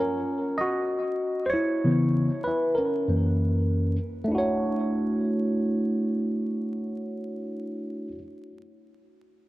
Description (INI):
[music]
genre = hip hop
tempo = 97 BPM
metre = 4/4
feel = swing 64% on 16ths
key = D major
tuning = A4 = 439 Hz
[part]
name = tine electric piano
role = solo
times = 0.0-8.2 s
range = F#2 to Eb5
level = -24 LUFS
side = equal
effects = overdrive, phaser, tape echo
[sound]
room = moderate plate reverb, RT60 3.3 s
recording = dark, warm production, vinyl crackle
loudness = -24 LUFS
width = side -17 dB against mid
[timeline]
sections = 0.0-4.3 A section; 4.3-6.8 B section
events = tine electric piano solo 0.0-4.3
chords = 0.0 F#; 1.8 C#m7; 3.1 F#7; 4.3 Dmaj7